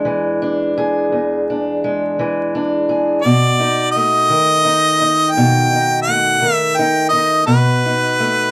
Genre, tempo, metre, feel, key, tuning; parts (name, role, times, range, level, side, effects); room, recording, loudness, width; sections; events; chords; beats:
acoustic country blues, solo or duo; 56 BPM (dotted quarters); 12/8; straight; A4 = 443 Hz
fingerpicked steel-string acoustic guitar; accompaniment; 0.0-8.5 s; E2 to G#4; -19 LUFS; equal
bright harmonica; melody; 3.2-8.5 s; B4 to G5; -16 LUFS; equal
moderate small room reverb, RT60 0.5 s; vinyl crackle; -16 LUFS; mono
0.0-8.5 A section
0.0 E7; 3.2 B7
0.05 1.11 2.18 | 3.24 4.30 5.36 6.42 | 7.48